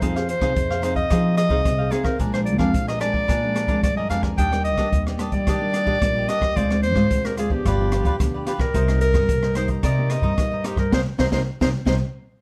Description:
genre	samba and choro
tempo	110 BPM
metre	4/4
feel	straight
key	C minor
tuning	A4 = 440 Hz
part	bright clarinet	melody	0.0-11.9 s	G4 to G5	-27 LUFS	equal	none
part	cavaquinho	accompaniment	0.0-12.0 s	D4 to Ab5	-33 LUFS	equal	none
part	nylon-string guitar	accompaniment	0.0-12.0 s	F2 to Ab4	-29 LUFS	equal	none
part	upright bass	bass	0.0-12.0 s	G1 to F3	-26 LUFS	equal	none
part	open jazz drum kit	drums	0.0-12.0 s	hi-hat, kick drum, rim click, snare drum	-27 LUFS	equal	none
room	light reverb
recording	dark, warm production, lossy compression artefacts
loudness	-21 LUFS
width	mono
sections	0.0-12.4 A section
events	band accent 10.9-12.4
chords	0.0 Fm7; 2.2 Bb7; 4.4 Ebmaj7; 6.6 Dm7b5; 7.7 G7; 8.7 Cm7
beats	| 0.03 0.57 1.11 1.66 | 2.20 2.75 3.29 3.84 | 4.38 4.93 5.47 6.02 | 6.56 7.11 7.65 8.20 | 8.74 9.29 9.84 10.38 | 10.93 11.47

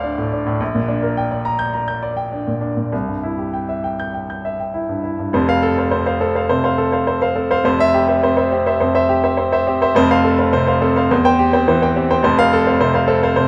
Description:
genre	classical, virtuoso piano study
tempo	104 BPM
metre	4/4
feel	rubato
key	F major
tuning	A4 = 440 Hz
part	clear baby grand piano	solo	0.0-13.5 s	F1 to G6	-17 LUFS	equal	none
room	moderate stone room reverb, RT60 1.0 s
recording	dark, warm production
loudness	-17 LUFS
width	mono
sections	0.0-5.3 A section; 5.3-13.5 B section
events	none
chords	0.0 Dm7; 0.6 Gm/Bb; 2.9 C; 5.3 F; 7.7 C/F; 10.0 F; 11.1 C/E; 12.2 F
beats	0.03 | 0.60 1.17 1.74 2.32 | 2.92 3.53 4.14 4.74 | 5.34 5.92 6.50 7.08 | 7.66 8.24 8.82 9.39 | 9.96 10.54 11.11 11.68 | 12.24 12.81 13.37

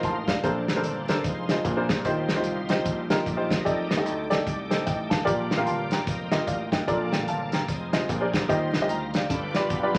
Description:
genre	uptempo gospel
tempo	149 BPM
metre	4/4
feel	swing 62% on 8ths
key	Bb major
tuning	A4 = 440 Hz
part	warm upright piano	accompaniment	0.0-10.0 s	G2 to C6	-29 LUFS	equal	none
part	bright tonewheel organ	sustained chords	0.0-10.0 s	Gb3 to Bb5	-37 LUFS	equal	slow rotary speaker, overdrive, chorus vibrato
part	dry thumbed slap bass	bass	0.0-10.0 s	F1 to F2	-36 LUFS	equal	none
part	warm soul drum kit	drums	0.0-10.0 s	hi-hat, kick drum, snare drum	-30 LUFS	equal	none
part	clean electric guitar	second line	9.3-10.0 s	B3 to B4	-40 LUFS	equal	none
room	moderate large studio reverb, RT60 1.3 s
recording	vinyl crackle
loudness	-26 LUFS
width	mono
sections	0.0-10.0 A section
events	none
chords	0.4 Bbmaj9; 1.2 Fm7; 1.6 Bb9; 2.0 Eb69; 3.7 F13; 5.3 Bb6; 6.1 F9sus4; 6.9 Bbmaj7; 7.7 Fm7; 8.1 Bb9; 8.5 Eb69; 9.3 G7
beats	0.03 | 0.44 0.84 1.24 1.65 | 2.05 2.45 2.85 3.26 | 3.66 4.06 4.46 4.87 | 5.27 5.67 6.08 6.48 | 6.88 7.29 7.69 8.09 | 8.49 8.90 9.30 9.71

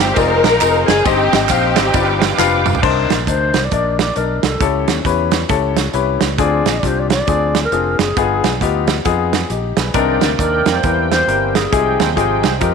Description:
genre	uptempo gospel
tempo	135 BPM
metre	4/4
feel	swing 61% on 8ths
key	C minor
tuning	A4 = 440 Hz
part	dark studio string section	melody	0.0-2.6 s	Ab3 to Bb4	-16 LUFS	left 2 dB	none
part	warm baby grand piano	accompaniment	0.0-12.7 s	G2 to F5	-18 LUFS	left 11 dB	none
part	bright tonewheel organ	sustained chords	0.0-2.8, 10.0-12.7 s	Eb3 to D6	-22 LUFS	right 11 dB	fast rotary speaker, overdrive, chorus vibrato
part	fingered electric bass	bass	0.0-12.7 s	F1 to F2	-21 LUFS	right 1 dB	none
part	natural country drum kit	drums	0.2-12.7 s	crash cymbal, hi-hat, kick drum, ride cymbal, snare drum, toms	-19 LUFS	right 7 dB	none
part	tambourine and handclaps	percussion	0.2-2.7 s	none	-26 LUFS	right 16 dB	none
part	wooden-headed alto flute	melody	3.3-12.0 s	Ab4 to Eb5	-20 LUFS	equal	none
room	moderate echo chamber reverb, RT60 1.9 s, small room ambience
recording	1960s-style stereo with parts hard left and right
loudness	-13 LUFS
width	side -6 dB against mid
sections	0.0-2.8 A section; 2.8-12.7 B section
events	drum fill 2.4-2.8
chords	0.0 Fm7; 1.1 Cm/G; 1.9 G7; 2.8 Cm9; 4.6 A7/C#; 6.4 Dm7b5; 8.2 G7b9b13; 9.9 Cm9; 10.8 C7/E; 11.7 Fm9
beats	0.17 0.61 | 1.06 1.50 1.94 2.39 | 2.83 3.27 3.72 4.16 | 4.61 5.05 5.49 5.94 | 6.38 6.83 7.27 7.72 | 8.16 8.61 9.05 9.50 | 9.94 10.39 10.83 11.28 | 11.72 12.17 12.62

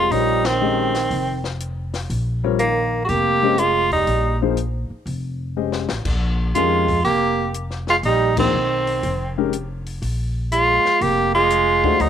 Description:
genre	modal jazz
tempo	121 BPM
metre	4/4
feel	swing 68% on 8ths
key	Bb dorian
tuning	A4 = 440 Hz
part	bright tenor saxophone	melody	0.0-12.1 s	Bb3 to G4	-18 LUFS	equal	none
part	clear trombone	second line	0.0-12.1 s	Eb3 to Bb3	-24 LUFS	right 11 dB	none
part	warm grand piano	accompaniment	0.0-12.1 s	Eb3 to Eb5	-23 LUFS	left 12 dB	none
part	upright bass	bass	0.0-12.1 s	F1 to F2	-24 LUFS	equal	none
part	compact cocktail drum kit	drums	0.1-12.1 s	crash cymbal, hi-hat, kick drum, ride cymbal, snare drum	-30 LUFS	left 3 dB	none
room	moderate spring reverb, RT60 1.3 s, small room reverb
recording	1960s-style stereo with parts hard left and right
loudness	-17 LUFS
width	side -9 dB against mid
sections	0.0-12.1 A section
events	band accent 0.4, 8.3; drum fill 5.6-6.1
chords	0.0 Bb13sus4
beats	| 0.11 0.60 1.10 1.60 | 2.09 2.59 3.08 3.58 | 4.08 4.57 5.07 5.56 | 6.06 6.55 7.05 7.54 | 8.04 8.53 9.03 9.53 | 10.02 10.52 11.01 11.51 | 12.00

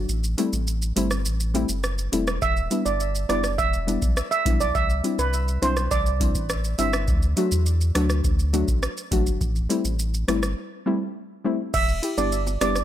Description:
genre	dancehall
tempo	103 BPM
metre	4/4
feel	straight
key	E minor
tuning	A4 = 439 Hz
part	saturated sub bass	bass	0.0-12.8 s	E1 to E2	-25 LUFS	equal	none
part	booming analog drum machine	drums	0.1-12.8 s	crash cymbal, hi-hat, kick drum, rim click, shaker	-26 LUFS	equal	none
part	soft round pluck	accompaniment	0.4-12.7 s	F#3 to G4	-26 LUFS	left 2 dB	chorus
part	steel pan	melody	2.4-6.9, 11.7-12.7 s	B4 to E5	-26 LUFS	right 5 dB	ping-pong delay
part	bongos	percussion	12.5-12.7 s	none	-37 LUFS	right 6 dB	none
room	digital ambience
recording	none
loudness	-21 LUFS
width	side -11 dB against mid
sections	0.0-11.7 A section; 11.7-12.8 B section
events	break 0.0-2.4, 10.6-11.7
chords	0.1 Am7; 2.4 Em7; 4.8 Cadd9; 7.1 D; 9.4 Am7; 11.7 Em7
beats	| 0.09 0.67 1.25 1.84 | 2.42 3.00 3.58 4.17 | 4.75 5.33 5.92 6.50 | 7.08 7.66 8.24 8.83 | 9.41 9.99 10.58 11.16 | 11.74 12.32

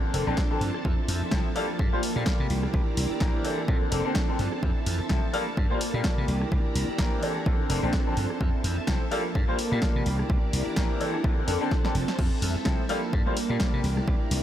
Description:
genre	filtered disco house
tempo	127 BPM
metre	4/4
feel	swing 56% on 16ths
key	F major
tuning	A4 = 439 Hz
part	bright grand piano	accompaniment	0.0-13.8 s	D3 to C5	-31 LUFS	left 2 dB	phaser, sidechain pumping, low-pass filter
part	string machine, full ensemble	sustained chords	0.0-14.4 s	F3 to Bb5	-34 LUFS	equal	ensemble chorus, vintage 12-bit sampler grit, sidechain pumping, low-pass filter
part	mellow electric guitar	riff	0.0-14.4 s	E3 to A4	-34 LUFS	right 4 dB	wide subtle chorus, sidechain pumping, low-pass filter
part	slap bass	bass	0.0-14.4 s	F1 to C3	-29 LUFS	equal	sidechain pumping, low-pass filter
part	punchy analog drum machine	drums	0.1-14.4 s	crash cymbal, hi-hat, rim click, snare drum	-34 LUFS	equal	sidechain pumping on hats, sidechain pumping on cymbals
part	electronic kick drum	drums	0.4-14.2 s	none	-27 LUFS	equal	none
part	tambourine and congas	percussion	12.2-14.4 s	none	-38 LUFS	left 4 dB	none
room	light reverb, digital ambience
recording	none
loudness	-24 LUFS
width	side -11 dB against mid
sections	0.0-14.4 A section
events	drum fill 11.7-12.2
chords	0.0 Bbmaj9; 0.8 Fmaj7; 1.6 Gm9; 2.5 C9; 3.7 Bbmaj9; 4.6 Fmaj7; 5.3 Gm9; 6.3 C9; 7.5 Bbmaj9; 8.4 Fmaj7; 9.1 Gm9; 10.1 C9; 11.2 Bbmaj9; 12.2 Fmaj7; 12.9 Gm9; 13.8 C9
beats	0.38 | 0.85 1.32 1.79 2.27 | 2.74 3.21 3.68 4.16 | 4.63 5.10 5.57 6.04 | 6.52 6.99 7.46 7.93 | 8.41 8.88 9.35 9.82 | 10.30 10.77 11.24 11.71 | 12.19 12.66 13.13 13.60 | 14.08

